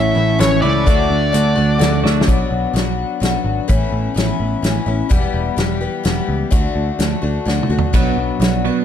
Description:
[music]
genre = folk rock and heartland rock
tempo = 127 BPM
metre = 3/4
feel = straight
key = D major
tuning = A4 = 438 Hz
[part]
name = nasal lead guitar with a parked wah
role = melody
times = 0.0-2.0 s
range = C#5 to E5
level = -21 LUFS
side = left 1 dB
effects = overdrive, tape echo
[part]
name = clear grand piano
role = accompaniment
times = 0.0-2.3 s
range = E4 to A5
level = -27 LUFS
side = left 8 dB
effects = none
[part]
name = picked twelve-string acoustic guitar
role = accompaniment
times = 0.0-8.8 s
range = E2 to G4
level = -21 LUFS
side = left 7 dB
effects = none
[part]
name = tonewheel organ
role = sustained chords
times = 0.0-2.3 s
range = A4 to D6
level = -28 LUFS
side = left 1 dB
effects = slow rotary speaker
[part]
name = twelve-string electric guitar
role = riff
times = 0.0-2.3, 7.9-8.8 s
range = A2 to F#4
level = -21 LUFS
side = right 11 dB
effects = spring reverb
[part]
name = picked electric bass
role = bass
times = 0.0-8.7 s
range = E1 to D2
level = -19 LUFS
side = equal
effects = none
[part]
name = natural country drum kit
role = drums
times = 0.4-8.5 s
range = hi-hat, kick drum, snare drum, splash cymbal, toms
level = -18 LUFS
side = equal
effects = none
[sound]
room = light reverb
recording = dark, warm production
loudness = -14 LUFS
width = side -9 dB against mid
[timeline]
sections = 0.0-2.3 A section; 2.3-8.8 B section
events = grand piano fill 1.3-2.3; drum fill 2.0, 7.5-7.9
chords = 0.0 A; 0.9 D; 2.3 Bm; 3.7 Aadd9; 5.1 Em; 6.5 D; 7.9 Bm

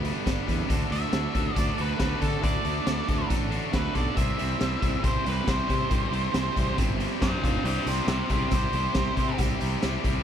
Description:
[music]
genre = classic rock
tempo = 138 BPM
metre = 4/4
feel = straight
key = unclear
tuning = A4 = 440 Hz
[part]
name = distorted electric guitar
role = riff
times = 0.0-10.2 s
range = F2 to D4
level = -32 LUFS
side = right 18 dB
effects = distortion
[part]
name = tight distorted guitar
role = riff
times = 0.0-10.2 s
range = C3 to C5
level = -33 LUFS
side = left 18 dB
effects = distortion
[part]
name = fuzz fingered electric bass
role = bass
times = 0.0-10.2 s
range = F1 to D3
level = -30 LUFS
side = equal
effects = overdrive
[part]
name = raw garage drum kit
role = drums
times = 0.0-10.1 s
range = hi-hat, kick drum, snare drum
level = -28 LUFS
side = equal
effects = none
[part]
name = octave-fuzz lead guitar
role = melody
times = 0.9-9.4 s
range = G4 to G5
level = -31 LUFS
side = equal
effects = distortion, slapback echo
[sound]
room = little or no reverb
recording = none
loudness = -24 LUFS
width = side -9 dB against mid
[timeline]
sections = 0.0-10.2 A section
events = lead electric guitar solo 0.0-10.2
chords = 0.0 G; 0.7 D; 4.2 C; 7.4 F5; 7.7 C

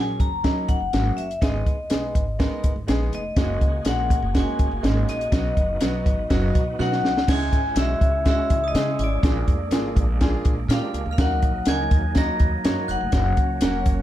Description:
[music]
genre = uptempo 1960s-style soul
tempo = 123 BPM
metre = 4/4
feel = straight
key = C# dorian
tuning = A4 = 440 Hz
[part]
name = vibraphone with medium hard mallets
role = melody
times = 0.0-13.8 s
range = D5 to A#5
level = -27 LUFS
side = left 3 dB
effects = none
[part]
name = clear upright piano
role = accompaniment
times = 0.0-13.9 s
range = F#3 to C#5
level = -29 LUFS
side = right 1 dB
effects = none
[part]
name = upright bass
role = bass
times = 0.0-14.0 s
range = E1 to C#3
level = -26 LUFS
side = equal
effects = none
[part]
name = compact cocktail drum kit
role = drums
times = 0.2-14.0 s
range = crash cymbal, hi-hat, kick drum, snare drum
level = -22 LUFS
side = equal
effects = none
[part]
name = overdriven tonewheel organ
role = sustained chords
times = 3.4-14.0 s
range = F#3 to G#4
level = -32 LUFS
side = right 3 dB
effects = fast rotary speaker, chorus vibrato
[part]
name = glockenspiel with brass mallets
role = second line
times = 6.8-13.8 s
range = D6 to A#6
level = -34 LUFS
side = right 8 dB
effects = none
[sound]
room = moderate studio reverb, RT60 0.7 s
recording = dark, warm production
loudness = -19 LUFS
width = side -13 dB against mid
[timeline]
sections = 0.0-7.3 A section; 7.3-14.0 B section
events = drum fill 6.8-7.3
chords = 0.0 F#; 1.4 G#m; 3.4 F#add9; 5.3 B; 7.3 C#m; 9.2 A#7; 11.2 D#m; 13.1 F#

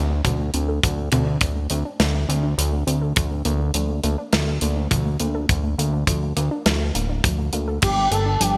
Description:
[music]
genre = synthwave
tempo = 103 BPM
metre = 4/4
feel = straight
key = unclear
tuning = A4 = 440 Hz
[part]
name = unison pluck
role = arpeggios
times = 0.0-8.6 s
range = F3 to A4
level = -32 LUFS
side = equal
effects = digital delay
[part]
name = fat analog bass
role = bass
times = 0.0-8.6 s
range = D1 to D2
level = -24 LUFS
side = equal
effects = none
[part]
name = kick drum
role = drums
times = 0.2-7.9 s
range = none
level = -23 LUFS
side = equal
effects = none
[part]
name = tight metal drum kit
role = drums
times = 0.2-8.5 s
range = crash cymbal, hi-hat, snare drum, toms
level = -26 LUFS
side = equal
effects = none
[part]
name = expressive portamento lead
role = melody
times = 7.8-8.6 s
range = G4 to A4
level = -22 LUFS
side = equal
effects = ensemble chorus, cassette tape
[sound]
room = light reverb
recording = bright 1980s-style digital production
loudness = -22 LUFS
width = mono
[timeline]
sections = 0.0-8.6 A section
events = filter sweep on synth arpeggio sound 0.0-8.6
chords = 0.0 D7; 3.2 Bbmaj7/D; 7.8 Gm7

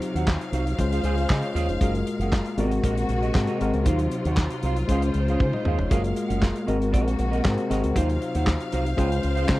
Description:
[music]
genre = disco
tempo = 117 BPM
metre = 4/4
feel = straight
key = Eb dorian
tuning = A4 = 440 Hz
[part]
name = mellow electric guitar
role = accompaniment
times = 0.0-9.5 s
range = C4 to Gb5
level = -31 LUFS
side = right 4 dB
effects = wide subtle chorus
[part]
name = tine electric piano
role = accompaniment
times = 0.0-9.6 s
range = Gb3 to Ab5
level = -27 LUFS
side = left 3 dB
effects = none
[part]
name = rich studio string section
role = sustained chords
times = 0.0-9.6 s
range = Bb2 to F5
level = -31 LUFS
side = equal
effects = none
[part]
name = warm soul drum kit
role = drums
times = 0.0-9.6 s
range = handclaps, hi-hat, kick drum, snare drum, toms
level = -25 LUFS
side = equal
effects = none
[part]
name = fingered electric bass with an envelope filter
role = bass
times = 0.1-9.6 s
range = F1 to Db3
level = -26 LUFS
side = equal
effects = none
[sound]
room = little or no reverb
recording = dry, close 1970s-style studio recording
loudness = -21 LUFS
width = side -17 dB against mid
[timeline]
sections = 0.0-9.6 A section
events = drum fill 5.4-5.9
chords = 0.0 Ebm69; 0.8 Dbmaj7; 1.8 Gbmaj9; 2.6 Ab9; 3.9 Ebm69; 4.9 Dbmaj7; 5.9 Gbmaj9; 6.7 Ab9; 8.0 Ebm69; 9.0 Dbmaj7

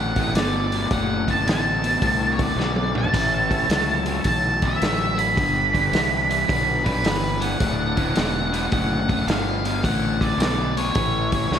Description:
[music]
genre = blues rock power trio and southern rock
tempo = 108 BPM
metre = 4/4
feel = swing 66% on 8ths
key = D major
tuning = A4 = 440 Hz
[part]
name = octave-fuzz lead guitar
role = melody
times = 0.0-11.6 s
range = B4 to B5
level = -24 LUFS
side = right 1 dB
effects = distortion, slapback echo
[part]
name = overdriven tonewheel organ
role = sustained chords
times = 0.0-11.6 s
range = A3 to Eb5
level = -36 LUFS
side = right 2 dB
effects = none
[part]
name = crunchy overdriven guitar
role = riff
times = 0.0-11.6 s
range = D2 to F#3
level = -26 LUFS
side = left 2 dB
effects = slapback echo
[part]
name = fuzz fingered electric bass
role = bass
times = 0.0-11.6 s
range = D1 to C#2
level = -26 LUFS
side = equal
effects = overdrive
[part]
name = vintage drum kit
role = drums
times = 0.2-11.6 s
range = hi-hat, kick drum, snare drum, splash cymbal, toms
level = -25 LUFS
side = equal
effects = none
[sound]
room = moderate scoring stage reverb, RT60 1.8 s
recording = big arena sound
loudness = -19 LUFS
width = side -8 dB against mid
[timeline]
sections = 0.0-11.6 A section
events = drum fill 2.6-3.1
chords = 0.0 D; 3.1 A; 5.4 G; 7.6 D; 11.0 A

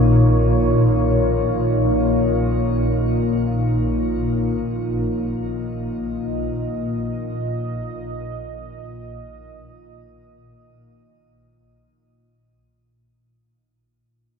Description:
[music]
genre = dark ambient drone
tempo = free time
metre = none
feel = none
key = unclear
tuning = A4 = 441 Hz
[part]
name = deep dark ambient pad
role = sustained chords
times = 0.0-13.2 s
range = Bb3 to Eb5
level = -22 LUFS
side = left 1 dB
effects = chorus, built-in reverb, shimmer reverb
[part]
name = swarming drone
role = drone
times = 0.0-13.3 s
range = Bb1 to Bb2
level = -21 LUFS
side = equal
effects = built-in reverb
[part]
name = quartz singing bowl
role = texture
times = 0.0-13.2 s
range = Db5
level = -52 LUFS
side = left 1 dB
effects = none
[sound]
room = wet cathedral reverb, RT60 5.9 s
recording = dark, warm production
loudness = -18 LUFS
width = side -6 dB against mid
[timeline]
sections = 0.0-13.2 A section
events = fade-out 0.0-13.2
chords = 0.0 Bbm

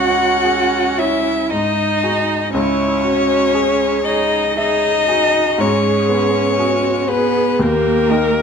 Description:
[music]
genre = classical, slow romantic movement for piano quartet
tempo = 56-62 BPM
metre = 3/4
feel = rubato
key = C# minor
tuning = A4 = 439 Hz
[part]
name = dark violin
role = melody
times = 0.0-8.4 s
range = A#4 to F#5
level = -18 LUFS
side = left 8 dB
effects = none
[part]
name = rich cello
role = second line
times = 0.0-8.4 s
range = A#3 to F#4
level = -19 LUFS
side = right 8 dB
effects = none
[part]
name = clear grand piano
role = accompaniment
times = 0.0-8.4 s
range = C#2 to E5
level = -21 LUFS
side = equal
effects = none
[part]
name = warm viola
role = accompaniment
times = 0.0-8.4 s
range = C#4 to A#4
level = -22 LUFS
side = right 4 dB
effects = none
[sound]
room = wet recital hall reverb, RT60 1.4 s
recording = none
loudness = -14 LUFS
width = side -6 dB against mid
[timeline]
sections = 0.0-8.4 A section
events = none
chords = 0.0 C#5; 1.5 G#5; 2.5 C#m; 5.6 G#m; 7.6 D#

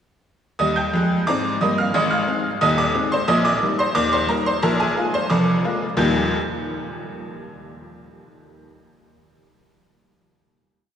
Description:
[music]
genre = ragtime piano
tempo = 89 BPM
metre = 2/4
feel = straight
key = Eb major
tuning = A4 = 443 Hz
[part]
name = tack piano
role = solo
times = 0.6-6.4 s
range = Eb1 to G6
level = -18 LUFS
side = equal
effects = none
[sound]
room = wet cathedral reverb, RT60 4.9 s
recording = recorded in a church or concert hall, small room ambience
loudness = -18 LUFS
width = side -8 dB against mid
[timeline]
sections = 0.6-6.0 A section; 6.0-7.3 final chord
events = none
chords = 0.6 Eb; 1.9 Ab; 3.3 Eb/Bb; 4.6 Bb7; 6.0 Eb

